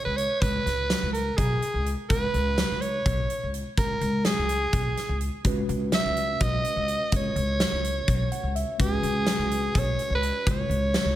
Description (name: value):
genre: progressive instrumental, band music in an uneven meter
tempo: 251 BPM (eighths)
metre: 7/8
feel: straight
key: unclear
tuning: A4 = 438 Hz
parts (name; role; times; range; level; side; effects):
- growling soprano saxophone; melody; 0.0-11.2 s; G#4 to E5; -27 LUFS; right 1 dB; tape echo
- upright bass; bass; 0.1-11.2 s; B1 to C#2; -28 LUFS; left 1 dB; none
- huge arena drum kit; drums; 0.2-11.1 s; hi-hat, kick drum, snare drum; -28 LUFS; equal; none
- mellow tine electric piano; accompaniment; 5.4-11.2 s; G#3 to F#5; -33 LUFS; left 1 dB; medium stereo tremolo
room: moderate studio reverb, RT60 0.6 s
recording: none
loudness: -23 LUFS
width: side -13 dB against mid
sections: 0.0-11.2 A section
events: tine electric piano fill 8.1-8.8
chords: 0.0 C#7(no3)